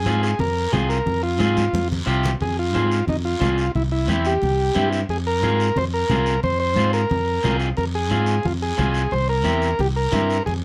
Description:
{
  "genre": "latin, cumbia",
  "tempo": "179 BPM",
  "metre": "4/4",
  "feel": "straight",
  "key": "F harmonic minor",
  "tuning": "A4 = 440 Hz",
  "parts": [
    { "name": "combo organ", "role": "melody", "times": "0.0-10.5 s", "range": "Eb4 to C5", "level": "-25 LUFS", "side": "equal", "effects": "none" },
    { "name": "fingered electric bass", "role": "bass", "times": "0.0-10.6 s", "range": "C2 to Ab2", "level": "-25 LUFS", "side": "equal", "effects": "none" },
    { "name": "electric guitar at the edge of break-up", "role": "accompaniment", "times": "0.1-10.4 s", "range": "C4 to Ab4", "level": "-27 LUFS", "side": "equal", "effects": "none" },
    { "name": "congas", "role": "percussion", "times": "0.1-10.6 s", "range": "none", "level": "-30 LUFS", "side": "equal", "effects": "none" },
    { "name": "guiro", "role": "percussion", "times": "0.1-10.6 s", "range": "none", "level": "-37 LUFS", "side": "equal", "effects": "none" }
  ],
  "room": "light reverb",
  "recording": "none",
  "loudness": "-21 LUFS",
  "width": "mono",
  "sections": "0.0-2.4 A section; 2.4-10.6 B section",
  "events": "transistor combo organ solo 0.0-2.4; drum fill 1.6-2.4",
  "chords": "0.0 Fm; 3.8 C; 5.1 Fm; 9.1 C7"
}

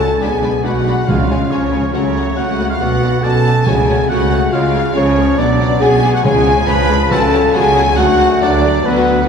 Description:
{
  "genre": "cinematic",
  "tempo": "139 BPM",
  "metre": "4/4",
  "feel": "straight",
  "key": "F# harmonic minor",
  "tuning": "A4 = 440 Hz",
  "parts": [
    { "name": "rich symphonic violin section", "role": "melody", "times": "0.0-9.3 s", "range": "B4 to B5", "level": "-22 LUFS", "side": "left 2 dB", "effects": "none" },
    { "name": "clear clarinet", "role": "second line", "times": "0.0-9.3 s", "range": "D3 to D4", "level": "-24 LUFS", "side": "left 1 dB", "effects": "none" },
    { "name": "mellow hollow wooden flute", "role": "second line", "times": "0.0-9.3 s", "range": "B4 to B5", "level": "-23 LUFS", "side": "left 2 dB", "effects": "none" },
    { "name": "warm oboe", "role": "second line", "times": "0.0-9.3 s", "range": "B4 to B5", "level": "-24 LUFS", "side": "right 2 dB", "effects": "none" },
    { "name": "warm symphonic violin section", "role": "second line", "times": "0.0-9.3 s", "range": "A4 to B5", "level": "-28 LUFS", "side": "left 3 dB", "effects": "none" },
    { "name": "rich symphonic viola section", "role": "accompaniment", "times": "0.0-9.3 s", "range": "F#3 to G#4", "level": "-24 LUFS", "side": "equal", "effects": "none" },
    { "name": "mellow French horn section", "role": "sustained chords", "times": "0.0-9.3 s", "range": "B3 to B4", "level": "-18 LUFS", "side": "left 4 dB", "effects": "none" },
    { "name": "warm trombone section", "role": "sustained chords", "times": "0.0-9.3 s", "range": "B2 to E#4", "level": "-24 LUFS", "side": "right 1 dB", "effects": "none" },
    { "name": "dark trumpet section", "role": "stabs", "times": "0.0-9.3 s", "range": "B3 to B4", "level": "-23 LUFS", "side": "right 2 dB", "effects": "none" },
    { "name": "clear symphonic double bass section", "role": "bass", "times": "0.0-9.3 s", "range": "B1 to D2", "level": "-18 LUFS", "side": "right 2 dB", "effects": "none" },
    { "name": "rich symphonic cello section", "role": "bass", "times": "0.0-9.3 s", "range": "D2 to C#3", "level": "-21 LUFS", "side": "right 2 dB", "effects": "none" },
    { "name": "timpani", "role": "percussion", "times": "1.1-7.7 s", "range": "C#3", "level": "-22 LUFS", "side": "equal", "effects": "none" }
  ],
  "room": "wet concert hall reverb, RT60 2.1 s",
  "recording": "heard from further back in the room",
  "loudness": "-11 LUFS",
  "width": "side -6 dB against mid",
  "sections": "0.0-9.3 A section",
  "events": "none",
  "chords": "0.2 G#dim/B; 1.1 C#; 1.9 F#m/C#; 2.8 Bm; 3.7 F#m/C#; 4.5 C#; 5.4 Bm; 6.2 C#; 7.1 F#m/C#; 8.0 D"
}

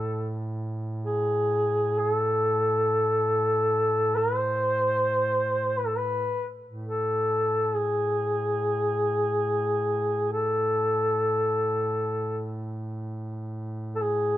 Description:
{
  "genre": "caucasian folk, Caucasian lament",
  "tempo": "free time",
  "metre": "none",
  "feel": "none",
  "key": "A harmonic minor",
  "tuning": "A4 = 439 Hz",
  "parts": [
    { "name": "mellow duduk", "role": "melody", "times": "0.0-14.4 s", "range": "G#4 to C5", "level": "-24 LUFS", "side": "equal", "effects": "none" },
    { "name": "mellow duduk", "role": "drone", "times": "0.0-14.4 s", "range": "A2", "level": "-32 LUFS", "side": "right 1 dB", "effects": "none" }
  ],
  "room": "light reverb",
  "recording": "close, detailed microphones",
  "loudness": "-24 LUFS",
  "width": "side -14 dB against mid",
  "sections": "0.0-14.4 A section",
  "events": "none",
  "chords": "none"
}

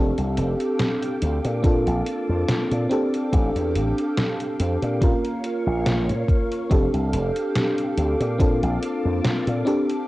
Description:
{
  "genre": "vaporwave",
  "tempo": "71 BPM",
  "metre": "4/4",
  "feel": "swing 54% on 16ths",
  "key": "F major",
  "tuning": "A4 = 440 Hz",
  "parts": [
    { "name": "FM electric piano with soft pad layer", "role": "accompaniment", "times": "0.0-10.1 s", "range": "Bb3 to Bb4", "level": "-24 LUFS", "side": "equal", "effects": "lush chorus, cassette tape, analog delay" },
    { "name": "soft string machine", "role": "sustained chords", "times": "0.0-10.1 s", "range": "Bb3 to D6", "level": "-33 LUFS", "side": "equal", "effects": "phaser, ensemble chorus, cassette tape" },
    { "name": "slap bass with an envelope filter", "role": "bass", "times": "0.0-9.6 s", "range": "F1 to Bb2", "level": "-24 LUFS", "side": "equal", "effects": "tube saturation" },
    { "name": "detuned 8-bit digital drum machine", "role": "drums", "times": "0.2-10.1 s", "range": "hi-hat, snare drum", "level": "-27 LUFS", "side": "equal", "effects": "overdrive" },
    { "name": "electronic kick drum", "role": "drums", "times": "1.6-8.6 s", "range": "none", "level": "-20 LUFS", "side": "equal", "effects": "overdrive" }
  ],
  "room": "moderate booth ambience, RT60 0.2 s",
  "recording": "home recording on cassette",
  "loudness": "-20 LUFS",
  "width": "side -18 dB against mid",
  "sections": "0.0-10.1 A section",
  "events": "none",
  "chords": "0.0 F69; 1.6 Bbmaj7; 2.9 F69/A; 5.0 Bbm; 6.7 F69; 8.4 Bbmaj7"
}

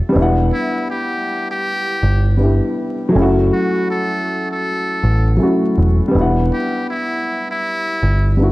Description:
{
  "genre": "lo-fi hip hop",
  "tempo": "80 BPM",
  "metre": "4/4",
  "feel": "swing 63% on 16ths",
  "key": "E dorian",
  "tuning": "A4 = 438 Hz",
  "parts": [
    { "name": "dark upright piano", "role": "accompaniment", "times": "0.0-8.5 s", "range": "F#3 to F#5", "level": "-18 LUFS", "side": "left 1 dB", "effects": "none" },
    { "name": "deep dub picked electric bass", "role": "bass", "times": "0.2-8.5 s", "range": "E1 to A1", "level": "-14 LUFS", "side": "equal", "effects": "none" },
    { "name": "trumpet with metal mute", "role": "melody", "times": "0.5-8.4 s", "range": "E4 to A4", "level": "-22 LUFS", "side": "equal", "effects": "none" }
  ],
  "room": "light reverb, small room ambience",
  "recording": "vinyl crackle",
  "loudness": "-15 LUFS",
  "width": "side -19 dB against mid",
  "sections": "0.0-8.5 A section",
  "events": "none",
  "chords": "0.1 Em9; 3.1 F#m7; 6.1 Em9"
}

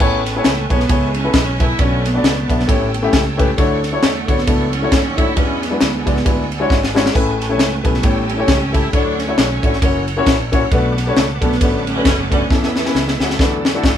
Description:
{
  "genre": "uptempo gospel",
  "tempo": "134 BPM",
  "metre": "4/4",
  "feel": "swing 57% on 8ths",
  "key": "A major",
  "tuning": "A4 = 439 Hz",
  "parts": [
    { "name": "warm baby grand piano", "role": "accompaniment", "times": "0.0-14.0 s", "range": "A2 to E5", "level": "-19 LUFS", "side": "left 3 dB", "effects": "none" },
    { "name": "bright tonewheel organ", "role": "sustained chords", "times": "0.0-14.0 s", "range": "B4 to E6", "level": "-29 LUFS", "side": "right 3 dB", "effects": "fast rotary speaker, chorus vibrato" },
    { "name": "fretless electric bass", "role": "bass", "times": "0.0-14.0 s", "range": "F#1 to E2", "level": "-23 LUFS", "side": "right 1 dB", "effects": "none" },
    { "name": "tight funk drum kit", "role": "drums", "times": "0.0-14.0 s", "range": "crash cymbal, kick drum, ride cymbal, snare drum, splash cymbal", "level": "-17 LUFS", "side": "equal", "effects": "none" },
    { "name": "warm studio string section", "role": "melody", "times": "0.5-14.0 s", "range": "D3 to E4", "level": "-22 LUFS", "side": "right 2 dB", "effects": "none" }
  ],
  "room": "moderate studio reverb, RT60 0.5 s",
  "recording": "band playing live in one room",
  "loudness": "-14 LUFS",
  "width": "side -10 dB against mid",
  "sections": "0.0-14.0 A section",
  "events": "drum fill 6.7-7.2, 12.5-14.0",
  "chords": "0.0 Amaj9; 1.8 Bm9; 2.7 A7; 3.6 Dmaj9; 5.4 E9; 7.2 Amaj9; 8.0 A7; 8.9 Dmaj9; 9.8 F#7; 10.7 Bm7; 12.5 A/E; 13.4 E9sus4"
}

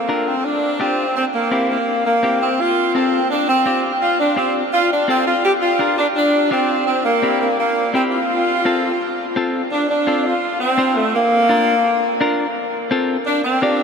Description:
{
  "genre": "latin",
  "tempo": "168 BPM",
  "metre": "4/4",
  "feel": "straight",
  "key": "F major",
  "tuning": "A4 = 440 Hz",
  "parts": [
    { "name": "clear saxophone section", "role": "melody", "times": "0.0-13.8 s", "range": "A3 to G4", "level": "-16 LUFS", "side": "equal", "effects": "none" },
    { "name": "clean electric guitar", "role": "accompaniment", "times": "0.1-13.8 s", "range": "C4 to C5", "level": "-22 LUFS", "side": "left 2 dB", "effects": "none" }
  ],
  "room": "wet huge ambient reverb, RT60 7.6 s",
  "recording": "in a vast, echoing space",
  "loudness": "-15 LUFS",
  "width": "side -6 dB against mid",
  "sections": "0.0-9.7 A section; 9.7-13.8 B section",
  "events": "saxophone section solo 9.7-13.8",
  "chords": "0.0 Bb; 1.2 C7; 2.6 F; 5.4 Bb; 6.9 C7; 8.3 F; 11.1 Bb; 12.6 F"
}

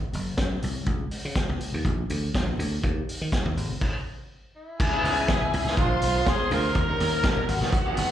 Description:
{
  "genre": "disco",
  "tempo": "122 BPM",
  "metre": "4/4",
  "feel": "straight",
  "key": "unclear",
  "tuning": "A4 = 443 Hz",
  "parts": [
    { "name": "congas", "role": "percussion", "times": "0.0-8.1 s", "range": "none", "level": "-36 LUFS", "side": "left 3 dB", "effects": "slapback echo" },
    { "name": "dry thumbed slap bass", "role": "bass", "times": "0.1-8.1 s", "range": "F#1 to D#3", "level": "-28 LUFS", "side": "equal", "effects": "none" },
    { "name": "vintage drum kit", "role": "drums", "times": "0.1-8.1 s", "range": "crash cymbal, hi-hat, kick drum, snare drum", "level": "-27 LUFS", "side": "equal", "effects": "none" },
    { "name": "raspy alto saxophone", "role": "melody", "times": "4.6-8.0 s", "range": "E4 to A#4", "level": "-29 LUFS", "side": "left 1 dB", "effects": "slapback echo" },
    { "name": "dark symphonic violin section", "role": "second line", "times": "4.8-8.1 s", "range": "F#4 to B#5", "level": "-28 LUFS", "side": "left 1 dB", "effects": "slapback echo" },
    { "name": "semi-hollow electric guitar", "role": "accompaniment", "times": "4.8-8.1 s", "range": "E3 to A#4", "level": "-31 LUFS", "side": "right 5 dB", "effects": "spring reverb, slapback echo" }
  ],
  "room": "light reverb, small room ambience",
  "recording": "live gig heard through the venue's PA, club reverb",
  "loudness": "-23 LUFS",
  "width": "side -11 dB against mid",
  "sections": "0.0-4.8 A section; 4.8-8.1 B section",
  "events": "stop 3.8-4.8",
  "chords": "0.0 N.C.; 1.9 A#; 2.8 N.C.; 4.8 C#m9; 5.8 A#7; 6.7 D#7; 7.5 G#m7"
}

